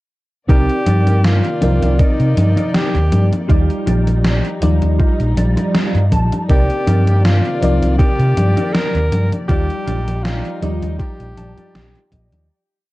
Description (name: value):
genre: vaporwave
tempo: 80 BPM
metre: 4/4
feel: swing 54% on 16ths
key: C minor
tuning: A4 = 440 Hz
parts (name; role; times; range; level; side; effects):
- breathy alto saxophone; melody; 0.5-12.1 s; Eb4 to Bb4; -23 LUFS; left 1 dB; tape echo
- FM electric piano with soft pad layer; accompaniment; 0.5-12.5 s; G3 to D5; -24 LUFS; equal; phaser, analog chorus
- dark studio string section; sustained chords; 0.5-12.5 s; C3 to D5; -28 LUFS; left 1 dB; none
- mellow electric guitar; riff; 0.5-12.5 s; Eb4 to A5; -27 LUFS; equal; ensemble chorus, analog delay
- overdriven fingered electric bass; bass; 0.5-12.5 s; Bb1 to C3; -15 LUFS; equal; none
- electronic kick drum; drums; 0.5-12.3 s; none; -14 LUFS; equal; overdrive, vintage 12-bit sampler grit
- gated 80s digital drum machine; drums; 0.5-12.5 s; congas, hi-hat, snare drum; -20 LUFS; equal; gated reverb, gated reverb snare, overdrive, vintage 12-bit sampler grit
room: little or no reverb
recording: dark, warm production, cassette tape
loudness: -13 LUFS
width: side -18 dB against mid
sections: 0.5-12.5 groove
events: clean electric guitar fill 5.0-6.5, 11.0-12.5; fade-out 8.5-12.5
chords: 0.5 Cm9; 3.5 Ebmaj9; 6.5 Cm9; 9.5 Ebmaj9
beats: | 0.50 1.25 2.00 2.75 | 3.50 4.25 5.00 5.75 | 6.50 7.25 8.00 8.75 | 9.50 10.25 11.00 11.75